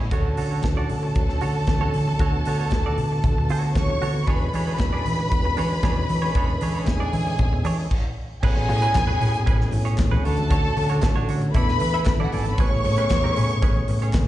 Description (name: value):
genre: disco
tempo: 116 BPM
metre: 4/4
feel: straight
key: unclear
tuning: A4 = 438 Hz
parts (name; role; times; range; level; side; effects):
- direct-recorded clean electric guitar; accompaniment; 0.0-14.2 s; C#4 to E5; -32 LUFS; right 8 dB; plate reverb, slapback echo
- percussive tonewheel organ; sustained chords; 0.0-14.3 s; B2 to G#4; -31 LUFS; equal; overdrive, chorus vibrato, slow rotary speaker
- overdriven fingered electric bass; bass; 0.0-14.3 s; G1 to E3; -24 LUFS; equal; none
- warm symphonic violin section; second line; 0.1-14.1 s; F#4 to C#6; -27 LUFS; equal; plate reverb, slapback echo
- modern studio drum kit; drums; 0.1-14.3 s; crash cymbal, hi-hat, kick drum, snare drum; -25 LUFS; equal; none
- congas; percussion; 0.1-14.3 s; none; -31 LUFS; left 4 dB; none
- group handclap; percussion; 9.0-14.3 s; none; -38 LUFS; left 2 dB; slapback echo
room: little or no reverb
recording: live gig heard through the venue's PA, recital hall reverb, nothing above 10.5 kHz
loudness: -19 LUFS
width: side -14 dB against mid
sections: 0.1-8.4 A section; 8.4-14.3 B section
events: stop 7.9-8.4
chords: 0.1 Dmaj7; 4.3 E13; 8.4 Amaj9; 10.2 Dmaj7; 11.5 E7sus4; 12.6 Amaj9